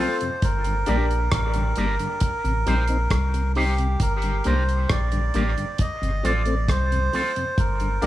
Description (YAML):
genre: dub reggae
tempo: 67 BPM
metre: 4/4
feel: straight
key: G minor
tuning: A4 = 440 Hz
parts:
  - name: melodica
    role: melody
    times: 0.0-8.1 s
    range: G4 to Eb5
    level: -27 LUFS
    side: right 1 dB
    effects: tape echo
  - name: electric guitar with an envelope filter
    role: accompaniment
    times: 0.0-8.1 s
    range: C4 to C5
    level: -31 LUFS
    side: right 1 dB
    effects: tape echo
  - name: mellow tonewheel organ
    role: accompaniment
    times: 0.0-8.1 s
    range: F2 to Eb4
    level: -29 LUFS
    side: left 2 dB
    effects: slow rotary speaker
  - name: clear grand piano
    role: stabs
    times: 0.0-1.1, 8.0-8.1 s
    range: C4 to D5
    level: -31 LUFS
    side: left 3 dB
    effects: tape echo
  - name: damped 70s drum kit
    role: drums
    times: 0.2-8.1 s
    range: hi-hat, kick drum, rim click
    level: -26 LUFS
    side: equal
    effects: none
  - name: soft dub sub bass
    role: bass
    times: 0.4-8.1 s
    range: G1 to C2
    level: -23 LUFS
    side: equal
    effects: none
room: light reverb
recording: studio ambience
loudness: -20 LUFS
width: side -14 dB against mid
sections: 0.0-8.1 A section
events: none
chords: 0.4 Gm; 2.2 Cm; 4.0 Gm; 5.8 F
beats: | 0.43 1.32 2.21 3.11 | 4.00 4.90 5.79 6.68 | 7.58